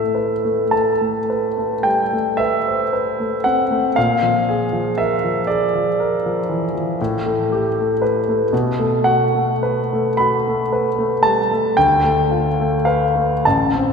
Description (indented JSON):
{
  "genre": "classical, impressionist solo piano",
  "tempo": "32-41 BPM (dotted quarters)",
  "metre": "9/8",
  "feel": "rubato",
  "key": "unclear",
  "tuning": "A4 = 442 Hz",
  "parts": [
    { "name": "warm concert grand piano", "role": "solo", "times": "0.0-13.9 s", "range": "A1 to B5", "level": "-16 LUFS", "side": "equal", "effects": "none" }
  ],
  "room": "wet church reverb, RT60 2.5 s",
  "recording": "minimal, uncompressed stereo recording",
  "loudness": "-16 LUFS",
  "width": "side -5 dB against mid",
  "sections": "0.0-13.9 A section",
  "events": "none",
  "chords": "0.0 Amadd9; 4.0 Bb7; 7.0 Asus2; 8.5 B5; 11.8 Dm6",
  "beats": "0.73 2.40 | 3.96 5.49 6.99 | 8.52 10.19 11.76 | 13.45"
}